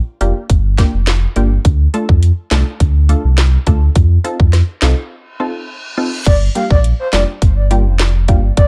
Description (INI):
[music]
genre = dancehall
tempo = 104 BPM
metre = 4/4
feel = straight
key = G minor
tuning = A4 = 437 Hz
[part]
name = punchy chord stab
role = accompaniment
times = 0.2-8.4 s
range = G3 to A4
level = -23 LUFS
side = equal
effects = chorus, phaser
[part]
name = sub bass with octave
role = bass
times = 0.2-8.7 s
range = F1 to F2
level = -14 LUFS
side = equal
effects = none
[part]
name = island pop drum kit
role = drums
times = 0.2-8.7 s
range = crash cymbal, handclaps, hi-hat, kick drum, rim click, snare drum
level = -16 LUFS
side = equal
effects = vintage 12-bit sampler grit
[part]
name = reverse cymbal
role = sound effects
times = 5.3-6.3 s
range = none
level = -29 LUFS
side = equal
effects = none
[part]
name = breathy flute-like synth lead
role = melody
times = 6.3-8.7 s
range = C5 to F5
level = -22 LUFS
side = equal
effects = chorus, tape echo
[sound]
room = digital ambience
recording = echo-heavy mix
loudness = -13 LUFS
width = mono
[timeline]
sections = 0.0-6.3 A section; 6.3-8.7 B section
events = break 5.1-6.3; reverse cymbal 5.3-6.3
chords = 0.0 Gm7; 1.6 Dm; 4.0 F7; 6.3 Gm7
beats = 0.49 1.07 | 1.65 2.23 2.80 3.38 | 3.96 4.53 5.11 5.69 | 6.26 6.84 7.42 8.00 | 8.57